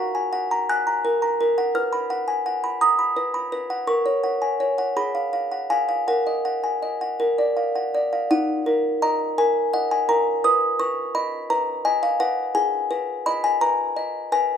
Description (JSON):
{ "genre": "classical, lullaby for music box", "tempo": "56 BPM (dotted quarters)", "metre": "6/8", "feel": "rubato", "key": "Eb minor", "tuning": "A4 = 441 Hz", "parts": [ { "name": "music box", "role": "solo", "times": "0.0-14.6 s", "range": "Eb4 to Gb6", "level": "-20 LUFS", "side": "equal", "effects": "none" } ], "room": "moderate large studio reverb, RT60 1.5 s", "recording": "band playing live in one room", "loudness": "-20 LUFS", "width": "side -8 dB against mid", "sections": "0.0-8.3 A section; 8.3-14.6 B section", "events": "none", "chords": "0.0 Gb; 1.7 B; 3.9 Gb/Bb; 5.0 Fdim/Ab; 6.1 Ebm/Bb; 7.2 Bb; 8.3 Ebm; 10.4 B; 12.5 Abm" }